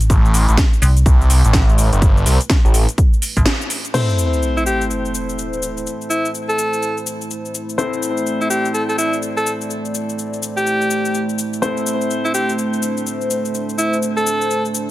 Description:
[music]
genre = bass house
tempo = 125 BPM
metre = 4/4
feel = swing 61% on 16ths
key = A minor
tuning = A4 = 436 Hz
[part]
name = dark analog pad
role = sustained chords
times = 0.0-14.9 s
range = A3 to D5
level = -25 LUFS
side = right 2 dB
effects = chorus, sidechain pumping
[part]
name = metallic FM bass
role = bass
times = 0.0-3.5 s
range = A1 to C2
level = -13 LUFS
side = equal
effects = overdrive, sidechain pumping
[part]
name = house drum kit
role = drums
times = 0.0-14.9 s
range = crash cymbal, hi-hat, shaker, snare drum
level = -23 LUFS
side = left 1 dB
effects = none
[part]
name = phased detuned saw bass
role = bass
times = 0.1-2.9 s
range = G1 to C2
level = -13 LUFS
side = equal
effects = phaser, overdrive, sidechain pumping
[part]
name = electronic kick drum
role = drums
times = 0.1-3.4 s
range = none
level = -14 LUFS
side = equal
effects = none
[part]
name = warm concert grand piano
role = stabs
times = 3.9-14.9 s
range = A3 to C5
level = -24 LUFS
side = left 3 dB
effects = sidechain pumping, digital delay
[part]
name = sub drop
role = sound effects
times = 3.9-5.9 s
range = none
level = -22 LUFS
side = equal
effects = none
[part]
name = edgy alto saxophone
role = melody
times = 4.6-14.6 s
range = E4 to A4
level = -20 LUFS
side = equal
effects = digital delay
[sound]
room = light reverb, digital ambience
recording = none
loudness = -15 LUFS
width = side -16 dB against mid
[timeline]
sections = 0.0-3.9 A section; 3.9-14.9 B section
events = drop 0.0-3.9; break 3.5-3.9; band accent 3.5; impact 3.9-5.9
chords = 0.0 Am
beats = | 0.10 0.58 1.06 1.54 | 2.02 2.50 2.98 3.46 | 3.94 4.42 4.90 5.38 | 5.86 6.34 6.82 7.30 | 7.78 8.26 8.74 9.22 | 9.70 10.18 10.66 11.14 | 11.62 12.10 12.58 13.06 | 13.54 14.02 14.50

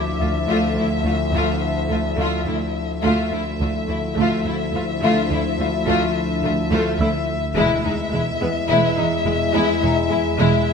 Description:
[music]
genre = cinematic, suspense film score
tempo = 53 BPM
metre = 4/4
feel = straight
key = D minor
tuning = A4 = 441 Hz
[part]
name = rich chamber violin section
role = melody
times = 0.0-10.7 s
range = E5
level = -26 LUFS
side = left 6 dB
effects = none
[part]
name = dark French horn section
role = sustained chords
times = 0.0-10.7 s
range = F3 to E4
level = -27 LUFS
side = left 4 dB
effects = none
[part]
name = analog drone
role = drone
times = 0.0-10.7 s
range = D2 to E2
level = -26 LUFS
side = equal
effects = chorus
[part]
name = impact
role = sound effects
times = 0.0-3.0 s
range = none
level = barely audible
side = none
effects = none
[part]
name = music box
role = texture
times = 0.0-10.4 s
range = D6 to E6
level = -36 LUFS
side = right 1 dB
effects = none
[part]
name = warm symphonic violin section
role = second line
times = 0.2-10.7 s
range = B3 to F4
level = -24 LUFS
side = left 4 dB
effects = none
[part]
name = rich chamber viola section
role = accompaniment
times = 0.2-10.6 s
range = G#3 to A3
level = -26 LUFS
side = right 1 dB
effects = none
[part]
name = warm chamber cello section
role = bass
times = 0.2-10.5 s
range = D2 to E2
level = -26 LUFS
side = right 3 dB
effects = none
[part]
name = warm chamber double bass section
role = bass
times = 0.2-10.5 s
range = E1 to D2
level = -27 LUFS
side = right 4 dB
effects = none
[sound]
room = moderate scoring stage reverb, RT60 1.9 s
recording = none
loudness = -18 LUFS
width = side -6 dB against mid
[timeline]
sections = 0.0-10.7 A section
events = impact 0.0-3.0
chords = 0.0 Dmadd9; 7.6 E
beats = 0.77 1.90 | 3.03 4.16 5.30 6.43 | 7.56 8.69 9.82

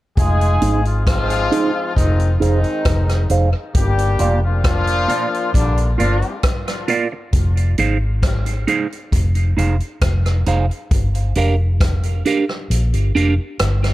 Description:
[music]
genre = dub reggae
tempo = 67 BPM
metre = 4/4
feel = straight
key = F dorian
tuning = A4 = 440 Hz
[part]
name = mellow horn section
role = second line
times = 0.2-6.3 s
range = D3 to Ab4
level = -21 LUFS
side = left 2 dB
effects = tape echo
[part]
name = vintage muted fingered electric bass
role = bass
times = 0.2-13.9 s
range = F1 to Bb1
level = -17 LUFS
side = equal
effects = none
[part]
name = vintage drum kit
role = drums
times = 0.2-13.9 s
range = hi-hat, kick drum, rim click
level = -20 LUFS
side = equal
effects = none
[part]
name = clean electric guitar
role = accompaniment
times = 0.6-13.3 s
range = D4 to F5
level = -22 LUFS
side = right 4 dB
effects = phaser, low-pass filter, tape echo
[sound]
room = light reverb, small room ambience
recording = none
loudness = -15 LUFS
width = side -16 dB against mid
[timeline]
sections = 0.2-13.9 A section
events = filter sweep on clean electric guitar 0.2-13.9; kick muted 12.7-13.9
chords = 0.2 Fm7; 3.8 Gm7; 7.3 Fm7; 10.9 Gm7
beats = | 0.17 1.07 1.96 2.86 | 3.75 4.65 5.54 6.44 | 7.33 8.23 9.12 10.02 | 10.91 11.81 12.70 13.60

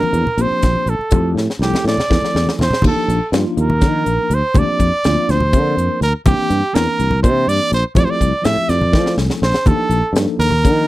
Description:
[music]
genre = electric jazz fusion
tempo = 246 BPM (eighths)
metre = 7/8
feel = straight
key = unclear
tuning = A4 = 440 Hz
[part]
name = bright trumpet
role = melody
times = 0.0-10.9 s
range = G4 to E5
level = -18 LUFS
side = right 2 dB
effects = none
[part]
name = tine electric piano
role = accompaniment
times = 0.0-10.9 s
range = E3 to Bb4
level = -22 LUFS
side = left 1 dB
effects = overdrive, fast stereo tremolo
[part]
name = congas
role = percussion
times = 0.0-10.6 s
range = none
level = -21 LUFS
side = left 1 dB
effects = none
[part]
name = sustaining fretless electric bass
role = bass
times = 0.1-10.9 s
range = Bb1 to F3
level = -17 LUFS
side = equal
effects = none
[part]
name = crisp fusion drum kit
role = drums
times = 0.1-10.8 s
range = crash cymbal, hi-hat, kick drum, snare drum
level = -18 LUFS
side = equal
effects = none
[sound]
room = little or no reverb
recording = dry, close 1970s-style studio recording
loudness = -13 LUFS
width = side -16 dB against mid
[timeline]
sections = 0.0-2.8 A section; 2.8-10.9 B section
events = drum fill 1.4-2.8, 8.9-9.7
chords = 0.0 C9sus4; 1.1 Fmaj9; 2.8 Ebmaj9; 4.5 Bb6/D; 6.3 C9; 8.0 Fmaj9; 9.7 Ebmaj9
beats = 0.15 0.39 0.64 0.88 | 1.13 1.37 1.62 1.86 2.10 2.35 2.59 | 2.84 3.08 3.33 3.57 3.82 4.06 4.30 | 4.55 4.79 5.04 5.28 5.53 5.77 6.01 | 6.26 6.50 6.75 6.99 7.23 7.48 7.72 | 7.96 8.21 8.45 8.70 8.94 9.18 9.43 | 9.67 9.91 10.16 10.40 10.64

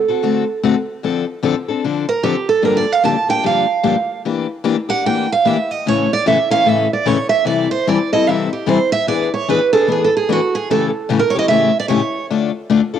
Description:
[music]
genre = jazz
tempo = 149 BPM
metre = 4/4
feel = swing 61% on 8ths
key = D minor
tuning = A4 = 438 Hz
[part]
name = picked steel-string acoustic guitar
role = melody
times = 0.0-12.3 s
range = F#4 to A5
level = -16 LUFS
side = right 5 dB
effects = cassette tape
[part]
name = picked steel-string acoustic guitar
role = accompaniment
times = 0.1-13.0 s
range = G2 to A4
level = -17 LUFS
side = left 7 dB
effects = cassette tape
[sound]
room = wet spring reverb, RT60 1.9 s, small room reverb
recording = home recording on cassette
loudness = -14 LUFS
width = side -9 dB against mid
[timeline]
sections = 0.0-1.0 A section; 1.0-13.0 B section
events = steel-string acoustic guitar solo 1.0-13.0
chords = 0.0 D7; 1.0 Dm7; 2.6 Gm7; 4.2 Em7b5; 5.9 A; 7.5 C6; 9.1 E7; 10.7 A7; 12.3 Dm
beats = 0.22 0.62 | 1.02 1.43 1.83 2.23 | 2.63 3.04 3.44 3.84 | 4.25 4.65 5.05 5.45 | 5.85 6.25 6.66 7.06 | 7.46 7.86 8.26 8.66 | 9.07 9.47 9.87 10.27 | 10.67 11.07 11.48 11.88 | 12.28 12.68

